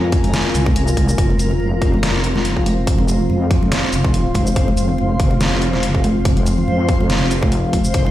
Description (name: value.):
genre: deep dubstep.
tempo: 142 BPM.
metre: 4/4.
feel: swing 55% on 16ths, half-time.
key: F minor.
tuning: A4 = 440 Hz.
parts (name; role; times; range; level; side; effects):
dark analog pad; sustained chords; 0.0-8.1 s; C4 to Ab5; -24 LUFS; left 1 dB; chorus.
wobble bass; bass; 0.0-8.1 s; F1 to F2; -19 LUFS; equal; chorus, tube saturation.
backwards swelling texture; texture; 0.0-8.1 s; Bb4 to C5; -27 LUFS; left 1 dB; built-in reverb.
dubstep drum kit; drums; 0.1-8.0 s; hi-hat, shaker, snare drum; -23 LUFS; left 1 dB; none.
electronic kick drum; drums; 0.1-8.0 s; none; -18 LUFS; equal; none.
congas; percussion; 0.2-8.1 s; none; -24 LUFS; right 1 dB; dub echo.
room: light reverb, digital ambience.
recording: played on a big sound system in a bare room, large studio reverb.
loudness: -14 LUFS.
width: side -14 dB against mid.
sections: 0.0-8.1 A section.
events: none.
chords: 0.0 F5.